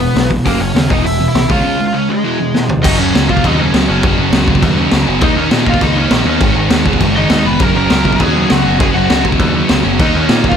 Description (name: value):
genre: punk rock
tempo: 201 BPM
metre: 4/4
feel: straight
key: F# major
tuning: A4 = 440 Hz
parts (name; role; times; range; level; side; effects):
- lead guitar through a small cranked amp; melody; 0.0-10.6 s; G#3 to B5; -18 LUFS; left 1 dB; overdrive
- sludgy distorted guitar; riff; 0.0-10.6 s; E2 to D#4; -18 LUFS; left 14 dB; overdrive
- sludgy distorted guitar; riff; 0.0-10.6 s; E2 to D#4; -17 LUFS; right 11 dB; overdrive
- growling picked electric bass; bass; 0.0-10.5 s; E1 to A#2; -17 LUFS; equal; overdrive
- raw garage drum kit; drums; 0.2-10.6 s; crash cymbal, hi-hat, kick drum, snare drum, toms; -15 LUFS; left 1 dB; none
- scooped high-gain guitar; riff; 2.8-10.6 s; F#2 to F#4; -21 LUFS; equal; distortion
room: little or no reverb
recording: none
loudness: -10 LUFS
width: side -8 dB against mid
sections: 0.0-2.8 A section; 2.8-10.6 B section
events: break 1.7-2.8; drum fill 2.5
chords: 0.5 F#; 0.9 E5; 1.5 C#; 2.2 E; 2.8 F#; 5.2 D#m; 6.4 G#m; 7.6 F#; 10.0 D#m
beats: 0.16 | 0.46 0.76 1.05 1.35 | 1.65 1.95 2.25 2.54 | 2.84 3.14 3.44 3.73 | 4.03 4.33 4.63 4.92 | 5.22 5.52 5.82 6.12 | 6.41 6.71 7.01 7.31 | 7.61 7.91 8.20 8.50 | 8.80 9.10 9.40 9.70 | 9.99 10.29